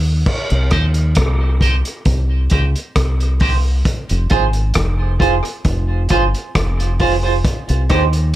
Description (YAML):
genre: dub reggae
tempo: 67 BPM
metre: 4/4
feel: straight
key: C phrygian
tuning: A4 = 439 Hz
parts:
  - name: deep dub fingered electric bass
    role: bass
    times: 0.0-8.3 s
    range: F1 to Eb2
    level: -16 LUFS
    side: equal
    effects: none
  - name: vintage drum kit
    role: drums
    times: 0.3-8.3 s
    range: crash cymbal, hi-hat, kick drum, rim click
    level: -19 LUFS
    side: equal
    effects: none
  - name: clean electric guitar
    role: accompaniment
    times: 0.7-8.0 s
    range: Eb4 to C5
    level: -20 LUFS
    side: right 5 dB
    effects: wide subtle chorus, high-pass filter, tape echo
room: light reverb, small room ambience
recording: none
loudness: -14 LUFS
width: side -14 dB against mid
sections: 0.3-8.4 A section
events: break 0.0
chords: 0.3 Cm; 3.9 Fm; 7.4 Cm